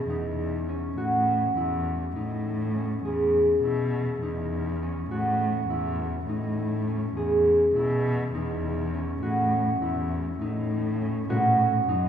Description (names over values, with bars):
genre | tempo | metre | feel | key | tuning
contemporary instrumental, chamber music in an uneven meter | 203 BPM (eighths) | 7/8 | straight | A lydian | A4 = 439 Hz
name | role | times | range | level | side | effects
concert harp | arpeggios | 0.0-12.1 s | C#4 to G#4 | -26 LUFS | equal | none
muted cello | bass | 0.0-12.1 s | E2 to B2 | -28 LUFS | equal | none
frame drum | percussion | 11.3-11.6 s | none | -31 LUFS | left 1 dB | none
room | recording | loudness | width
wet church reverb, RT60 3.4 s | recorded in a church or concert hall | -24 LUFS | side -9 dB against mid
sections
0.0-11.3 A section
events
none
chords
0.0 E; 1.0 A; 3.0 E; 5.1 A; 7.2 E; 9.2 A; 11.3 F#m6